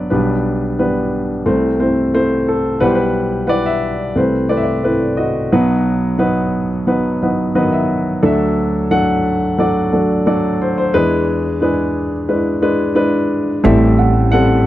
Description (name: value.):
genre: folk.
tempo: 89 BPM.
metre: 4/4.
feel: straight.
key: E minor.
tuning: A4 = 440 Hz.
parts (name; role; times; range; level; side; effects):
dark baby grand piano; melody; 0.0-14.7 s; A1 to F#5; -14 LUFS; equal; none.
upright bass; bass; 13.6-14.7 s; A1; -13 LUFS; equal; none.
felt-muted upright piano; arpeggios; 14.0-14.7 s; F#5; -22 LUFS; right 8 dB; none.
room: light reverb.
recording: dry, close 1970s-style studio recording.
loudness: -13 LUFS.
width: side -14 dB against mid.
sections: 0.0-8.2 A section; 8.2-14.7 B section.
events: grand piano fill 7.2-8.2.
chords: 0.1 G/B; 1.5 Am/C; 2.8 Emadd9/B; 4.2 Amadd9/C; 5.5 B; 8.2 D; 10.9 E7; 13.6 Am7.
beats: | 0.10 0.78 1.46 2.13 | 2.81 3.49 4.16 4.84 | 5.52 6.19 6.87 7.55 | 8.23 8.91 9.59 10.27 | 10.94 11.62 12.30 12.97 | 13.65 14.32.